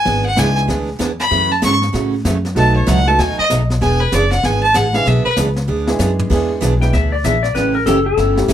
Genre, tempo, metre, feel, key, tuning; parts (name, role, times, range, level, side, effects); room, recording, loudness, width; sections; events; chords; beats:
country, western swing; 192 BPM; 4/4; swing 63% on 8ths; E mixolydian; A4 = 437 Hz
clear fiddle; melody; 0.0-5.3 s; B4 to C#6; -16 LUFS; equal
picked steel-string acoustic guitar; accompaniment; 0.1-8.5 s; B2 to G#4; -20 LUFS; right 5 dB
upright bass; bass; 0.1-8.5 s; E1 to A2; -17 LUFS; left 1 dB
jazz brush drum kit; drums; 0.1-8.5 s; brushed snare drum, crash cymbal, hi-hat, kick drum, snare drum, toms; -23 LUFS; left 1 dB
clear upright piano; accompaniment; 0.4-8.5 s; G3 to B4; -21 LUFS; right 2 dB
clean lap steel guitar; second line; 6.8-8.5 s; A4 to G5; -17 LUFS; left 8 dB
light reverb; -13 LUFS; side -10 dB against mid
0.0-6.3 A section; 6.3-8.5 A section
fiddle solo 0.0-6.3; drum fill 5.7-6.3; electric slide guitar solo 6.3-8.5
0.0 E7; 1.3 F#m7; 2.6 B7; 3.8 E7; 7.5 A7
| 0.06 0.37 0.68 0.99 | 1.31 1.62 1.93 2.24 | 2.56 2.87 3.18 3.49 | 3.81 4.12 4.43 4.74 | 5.05 5.37 5.68 5.99 | 6.30 6.61 6.92 7.24 | 7.55 7.86 8.17 8.48